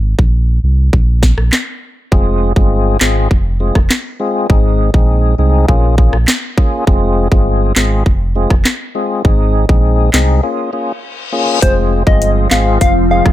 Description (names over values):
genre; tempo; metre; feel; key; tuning
dancehall; 101 BPM; 4/4; straight; unclear; A4 = 440 Hz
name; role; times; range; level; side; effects
sub bass with octave; bass; 0.0-13.3 s; F1 to C2; -13 LUFS; equal; none
island pop drum kit; drums; 0.2-13.3 s; handclaps, hi-hat, kick drum, rim click, snare drum; -12 LUFS; equal; none
tonewheel organ; accompaniment; 2.1-13.3 s; Ab3 to Ab4; -17 LUFS; left 2 dB; overdrive, chorus vibrato, slow rotary speaker
reverse cymbal; sound effects; 10.9-11.6 s; none; -21 LUFS; left 7 dB; none
soft struck synth lead; melody; 11.6-13.2 s; C5 to F5; -16 LUFS; left 2 dB; chorus, tremolo, tape echo
glassy FM pad; sustained chords; 12.0-13.3 s; F3 to C4; -18 LUFS; equal; ensemble chorus, built-in reverb, sidechain pumping
room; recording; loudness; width
digital ambience; none; -10 LUFS; side -14 dB against mid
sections
0.0-11.6 A section; 11.6-13.3 B section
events
break 0.0-2.1, 10.4-11.6; reverse cymbal 10.9-11.6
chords
0.0 Ab; 0.9 N.C.; 2.1 Fm; 4.5 Ab; 5.7 Bbm7; 6.9 Fm; 9.2 Ab; 10.4 Bbm7; 11.6 Fm